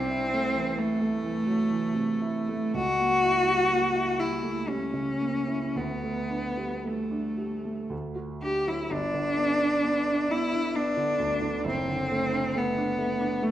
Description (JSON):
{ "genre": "classical, romantic duo for cello and grand piano", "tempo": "53-70 BPM", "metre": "3/4", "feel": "rubato", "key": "G major", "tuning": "A4 = 440 Hz", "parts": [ { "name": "rich cello", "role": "melody", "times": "0.0-13.5 s", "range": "A3 to G4", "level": "-26 LUFS", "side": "left 1 dB", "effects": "none" }, { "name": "warm grand piano", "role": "accompaniment", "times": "0.0-13.5 s", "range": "F#1 to F#4", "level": "-31 LUFS", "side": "right 3 dB", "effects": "none" } ], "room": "moderate scoring stage reverb, RT60 2.1 s", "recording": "none", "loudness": "-25 LUFS", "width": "side -12 dB against mid", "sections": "0.0-8.9 A section; 8.9-13.5 B section", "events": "none", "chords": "0.0 Am/C; 2.8 C#dim7; 5.8 Dsus4; 7.9 D; 8.9 G; 11.7 D7/F#" }